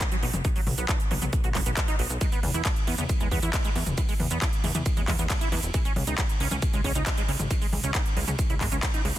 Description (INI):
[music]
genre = uplifting trance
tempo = 136 BPM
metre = 4/4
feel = straight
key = unclear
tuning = A4 = 440 Hz
[part]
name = big-room dance drum kit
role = drums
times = 0.0-9.2 s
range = handclaps, hi-hat, ride cymbal, shaker, toms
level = -30 LUFS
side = equal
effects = sidechain pumping on hats, small room ambience, sidechain pumping on perc, sidechain pumping on toms, sidechain pumping on cymbals
[part]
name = electronic kick drum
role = drums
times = 0.0-8.9 s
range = none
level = -26 LUFS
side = equal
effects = small room ambience
[part]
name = liquid acid bass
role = arpeggios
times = 0.1-9.1 s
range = F#3 to F#4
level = -33 LUFS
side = right 3 dB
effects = analog chorus, sidechain pumping, tape echo
[part]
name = plucky analog bass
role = bass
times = 0.2-9.2 s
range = E1 to E2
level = -30 LUFS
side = equal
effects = sidechain pumping
[sound]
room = little or no reverb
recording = dense, heavily limited modern master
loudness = -24 LUFS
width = side -13 dB against mid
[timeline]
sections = 0.0-9.2 A section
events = none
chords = 0.0 B5; 2.2 E5; 5.7 C#5